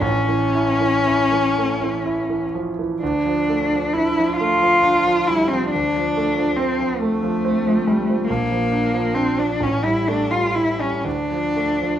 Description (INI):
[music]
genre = classical, romantic duo for cello and grand piano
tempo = 39-48 BPM (dotted quarters)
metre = 6/8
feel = rubato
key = D minor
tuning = A4 = 441 Hz
[part]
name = warm cello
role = melody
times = 0.0-12.0 s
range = A3 to F4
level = -19 LUFS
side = left 2 dB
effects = none
[part]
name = clear concert grand piano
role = accompaniment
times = 0.0-12.0 s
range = A1 to E4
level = -22 LUFS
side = right 3 dB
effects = none
[sound]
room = light reverb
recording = close, detailed microphones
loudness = -17 LUFS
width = side -10 dB against mid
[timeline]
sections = 0.0-12.0 A section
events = none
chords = 0.0 A; 3.0 Dm; 5.7 F/D; 8.3 Bb; 9.6 A5; 11.1 Dm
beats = | 0.02 1.54 | 3.01 4.38 | 5.70 7.00 | 8.28 9.61 | 11.05